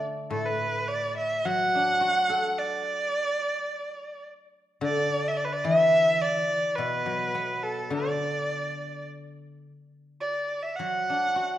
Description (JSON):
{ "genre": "chinese traditional, Chinese chamber ensemble", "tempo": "106 BPM", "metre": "4/4", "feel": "rubato", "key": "D gong mode", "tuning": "A4 = 436 Hz", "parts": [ { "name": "guzheng", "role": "accompaniment", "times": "0.0-11.6 s", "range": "A2 to A4", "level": "-28 LUFS", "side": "left 2 dB", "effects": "none" }, { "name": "rich erhu", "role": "melody", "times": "0.3-11.6 s", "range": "A4 to F#5", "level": "-26 LUFS", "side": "right 1 dB", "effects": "none" } ], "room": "wet recital hall reverb, RT60 1.4 s", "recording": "dark, warm production", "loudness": "-24 LUFS", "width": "side -12 dB against mid", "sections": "0.3-11.6 A section", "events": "none", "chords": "none", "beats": "| 0.32 0.89 1.46 2.03 | 2.59 3.15 3.71 4.26 | 4.82 5.37 5.93 6.49 | 7.06 7.63 8.20 8.78 | 9.35 9.93 10.51 11.08" }